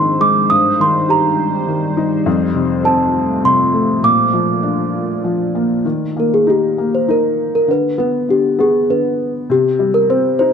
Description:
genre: children's music, lullaby.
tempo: 100 BPM.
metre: 3/4.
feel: rubato.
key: Eb major.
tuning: A4 = 439 Hz.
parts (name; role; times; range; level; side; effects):
celesta; melody; 0.0-10.5 s; G4 to Eb6; -14 LUFS; right 1 dB; none.
felt-muted upright piano; accompaniment; 0.0-10.5 s; F2 to G4; -17 LUFS; left 3 dB; none.
deep dark ambient pad; sustained chords; 0.0-5.8 s; G3 to D5; -22 LUFS; right 1 dB; chorus, built-in reverb.
room: light reverb.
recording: close, detailed microphones.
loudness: -13 LUFS.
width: side -7 dB against mid.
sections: 0.0-5.8 A section; 5.8-10.5 B section.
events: none.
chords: 0.0 Ab; 0.5 Cm/G; 2.3 F; 4.0 Bb; 5.8 Eb5; 7.7 Abdim/D (rootless); 9.5 Cm.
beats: | 0.50 1.09 1.68 | 2.27 2.85 3.44 | 4.03 4.63 5.23 | 5.85 6.46 7.08 | 7.68 8.29 8.89 | 9.48 10.09.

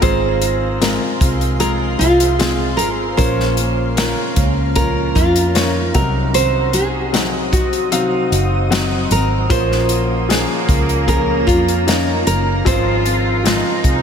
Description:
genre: pop ballad.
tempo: 76 BPM.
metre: 4/4.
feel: straight.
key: Bb minor.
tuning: A4 = 440 Hz.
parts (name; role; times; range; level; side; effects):
nylon-string guitar; melody; 0.0-14.0 s; F4 to C5; -20 LUFS; right 1 dB; slapback echo.
clear grand piano; accompaniment; 0.0-14.0 s; Ab2 to F5; -22 LUFS; left 4 dB; slapback echo.
shimmering ambient pad; sustained chords; 0.0-14.0 s; Db4 to Eb6; -25 LUFS; equal; chorus, built-in reverb.
fingerpicked plugged-in steel-string acoustic guitar; arpeggios; 0.0-14.0 s; Bb2 to Bb4; -26 LUFS; right 6 dB; slapback echo, ping-pong delay.
vintage muted fingered electric bass; bass; 0.0-14.0 s; Gb1 to F2; -20 LUFS; equal; none.
natural country drum kit; drums; 0.0-14.0 s; hi-hat, kick drum, snare drum; -19 LUFS; left 1 dB; none.
rich chamber cello section; second line; 9.5-14.0 s; Bb3 to F4; -23 LUFS; right 2 dB; slapback echo.
room: moderate lush hall reverb, RT60 2.9 s.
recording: big arena sound.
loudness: -14 LUFS.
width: side -7 dB against mid.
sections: 0.0-14.0 A section.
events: none.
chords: 0.0 Fm/Ab; 3.2 Bbm; 5.9 Cdim; 9.5 Bbm; 12.7 Fm/Ab.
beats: | 0.03 0.81 1.60 2.39 | 3.18 3.97 4.76 5.55 | 6.34 7.13 7.92 8.71 | 9.50 10.29 11.08 11.87 | 12.66 13.45.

